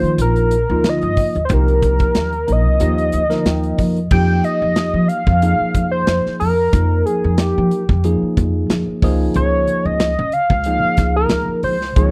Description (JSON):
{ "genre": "electric jazz fusion", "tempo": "92 BPM", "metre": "4/4", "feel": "swing 54% on 16ths", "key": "Eb major", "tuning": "A4 = 440 Hz", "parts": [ { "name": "lead with added fifth", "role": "melody", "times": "0.0-12.1 s", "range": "G4 to G5", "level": "-21 LUFS", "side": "equal", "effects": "chorus, slapback echo" }, { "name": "tine electric piano", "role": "accompaniment", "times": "0.0-12.1 s", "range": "F3 to G5", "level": "-23 LUFS", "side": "equal", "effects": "phaser" }, { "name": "upright bass", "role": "bass", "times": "0.0-12.1 s", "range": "Bb1 to F3", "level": "-21 LUFS", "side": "equal", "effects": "none" }, { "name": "modern studio drum kit", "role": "drums", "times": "0.0-12.1 s", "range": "crash cymbal, hi-hat, kick drum, snare drum", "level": "-21 LUFS", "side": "equal", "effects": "none" } ], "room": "little or no reverb", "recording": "none", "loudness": "-17 LUFS", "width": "mono", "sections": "0.0-4.1 A section; 4.1-12.1 B section", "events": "tine electric piano fill 3.1-4.1", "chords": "0.0 Ebmaj7sus2; 1.5 Cm7; 2.8 Ebmaj9; 4.1 Fm11; 9.0 Dbadd9" }